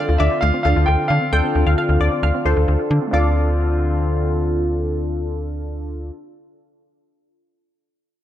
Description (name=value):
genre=synth-pop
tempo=133 BPM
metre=4/4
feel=straight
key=D minor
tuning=A4 = 439 Hz
part: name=bright concert grand piano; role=melody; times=0.0-6.1 s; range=D5 to G5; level=-24 LUFS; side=right 1 dB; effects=low-pass filter, tape echo
part: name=analog pluck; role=second line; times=0.0-4.4 s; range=C5 to G5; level=-25 LUFS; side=left 2 dB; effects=chorus, tape echo
part: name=warm analog keys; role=accompaniment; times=0.0-6.1 s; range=D4 to A4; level=-25 LUFS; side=right 1 dB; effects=chorus, phaser, low-pass filter
part: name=chorused pulse-width pad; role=sustained chords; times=0.0-6.1 s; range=D3 to F4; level=-26 LUFS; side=left 2 dB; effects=low-pass filter
part: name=wide unison pluck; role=arpeggios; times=0.0-6.2 s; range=A3 to A4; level=-30 LUFS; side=right 2 dB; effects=low-pass filter, tape echo
part: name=slap-like FM bass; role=bass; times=0.1-6.1 s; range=D2 to D3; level=-19 LUFS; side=equal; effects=none
room=light reverb, digital ambience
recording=none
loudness=-16 LUFS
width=side -11 dB against mid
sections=0.0-3.1 A section; 3.1-6.7 B section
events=filter sweep 0.0-3.1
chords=0.0 Dm7